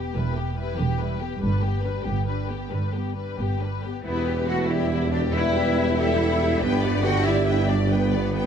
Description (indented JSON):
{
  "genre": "cinematic, heroic adventure film score",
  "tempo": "93 BPM (dotted quarters)",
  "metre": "6/8",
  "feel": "straight",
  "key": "E minor",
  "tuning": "A4 = 441 Hz",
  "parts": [
    { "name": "warm symphonic violin section", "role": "melody", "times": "0.0-8.5 s", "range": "E4 to G5", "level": "-32 LUFS", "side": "left 7 dB", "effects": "none" },
    { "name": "warm symphonic violin section", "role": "second line", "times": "0.0-8.5 s", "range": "B3 to F#5", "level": "-36 LUFS", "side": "left 3 dB", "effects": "none" },
    { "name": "warm symphonic viola section", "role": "accompaniment", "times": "0.0-8.5 s", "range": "G3 to D5", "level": "-33 LUFS", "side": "right 1 dB", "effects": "none" },
    { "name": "dark symphonic double bass section", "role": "bass", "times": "0.0-8.5 s", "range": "E1 to E2", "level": "-26 LUFS", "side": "right 2 dB", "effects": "none" },
    { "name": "warm symphonic cello section", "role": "bass", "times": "0.0-8.5 s", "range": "E2 to F#4", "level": "-29 LUFS", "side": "right 2 dB", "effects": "none" },
    { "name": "silver concert flute", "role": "second line", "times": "4.0-8.5 s", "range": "B4 to F#5", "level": "-32 LUFS", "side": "left 2 dB", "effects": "none" },
    { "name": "warm French horn section", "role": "sustained chords", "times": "4.0-8.5 s", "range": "D3 to A3", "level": "-31 LUFS", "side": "left 4 dB", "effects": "none" },
    { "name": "mellow tuba", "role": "bass", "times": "4.0-8.5 s", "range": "E1 to G1", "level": "-27 LUFS", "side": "right 4 dB", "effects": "none" },
    { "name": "warm clarinet", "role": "second line", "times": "4.1-8.5 s", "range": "G4 to B4", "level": "-30 LUFS", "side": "left 2 dB", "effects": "none" }
  ],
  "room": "moderate scoring stage reverb, RT60 1.7 s",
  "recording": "dark, warm production",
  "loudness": "-21 LUFS",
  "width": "side -8 dB against mid",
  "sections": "0.0-4.0 A section; 4.0-8.5 B section",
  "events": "none",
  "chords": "0.0 Em; 1.4 G; 4.0 Em; 6.6 G"
}